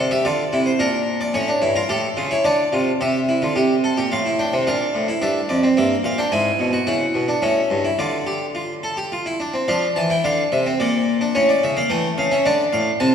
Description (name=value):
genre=classical, baroque-style 3-part fugue for harpsichord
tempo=109 BPM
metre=3/4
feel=straight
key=D minor from 6.3 s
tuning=A4 = 440 Hz
part: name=harpsichord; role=solo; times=0.0-13.1 s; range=F2 to A5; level=-17 LUFS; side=equal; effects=none
room=wet church reverb, RT60 2.7 s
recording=recorded in a church or concert hall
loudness=-17 LUFS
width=side -8 dB against mid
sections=0.0-3.0 A section; 3.0-9.7 B section; 9.7-13.1 A section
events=none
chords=0.0 Dm; 0.8 Bb; 1.3 A; 2.4 Dm; 3.0 C; 4.1 F/A; 4.7 Bb; 5.8 Edim/G; 6.3 E7/G#; 7.4 A7; 8.0 Dm; 10.8 Bb; 11.3 A; 12.4 Dm